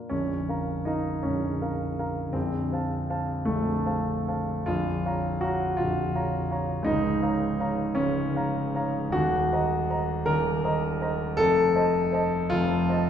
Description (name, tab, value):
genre	classical, romantic character piece for solo piano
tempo	48-56 BPM (dotted quarters)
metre	6/8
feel	rubato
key	Bb minor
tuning	A4 = 440 Hz
part	warm concert grand piano	solo	0.0-13.1 s	Bb0 to Bb5	-24 LUFS	equal	none
room	wet recital hall reverb, RT60 1.3 s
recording	heard from further back in the room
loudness	-24 LUFS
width	side -8 dB against mid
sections	0.1-13.1 A section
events	none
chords	0.1 Bbm; 2.3 F/Bb; 4.7 Bbm; 6.9 Bbm/Db; 9.1 Cm7b5/Eb; 11.4 F7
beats	| 0.12 1.25 | 2.35 3.46 | 4.67 5.77 | 6.86 7.96 | 9.14 10.26 | 11.39 12.51